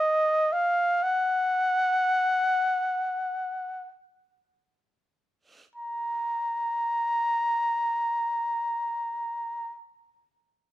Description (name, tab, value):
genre	classical, free, expressive piece for unaccompanied trumpet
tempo	free time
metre	none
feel	none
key	unclear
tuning	A4 = 442 Hz
part	mellow trumpet	solo	0.0-9.8 s	Eb5 to Bb5	-24 LUFS	equal	none
room	little or no reverb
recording	close, detailed microphones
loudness	-24 LUFS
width	side -14 dB against mid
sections	0.0-5.8 A section; 5.8-10.3 B section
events	slowing down 0.0-5.8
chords	none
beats	free time